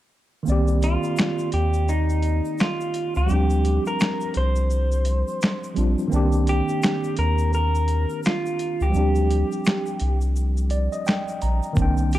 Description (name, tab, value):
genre	lo-fi hip hop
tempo	85 BPM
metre	4/4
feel	swing 60% on 16ths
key	C minor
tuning	A4 = 440 Hz
part	tine electric piano	accompaniment	0.4-12.2 s	Eb3 to Bb5	-26 LUFS	equal	overdrive, fast stereo tremolo, cassette tape, low-pass filter
part	round analog bass	bass	0.5-12.2 s	Bb1 to Eb2	-21 LUFS	equal	none
part	dusty soul sampler-style drum kit	drums	0.5-12.2 s	finger snaps, hi-hat, kick drum, shaker, snare drum	-24 LUFS	equal	overdrive, vintage 12-bit sampler grit
part	tube shaker	percussion	0.5-12.2 s	none	-49 LUFS	left 7 dB	none
part	electric guitar through a small old amp	melody	0.8-12.2 s	Eb4 to C5	-27 LUFS	right 1 dB	low-pass filter
room	light reverb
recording	dark, warm production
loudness	-20 LUFS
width	side -14 dB against mid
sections	0.5-12.2 A section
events	kick muted 0.5-11.8; tine electric piano fill 10.4-11.8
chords	0.5 Cm7; 3.3 G7sus4; 6.1 Cm7; 8.9 G7sus4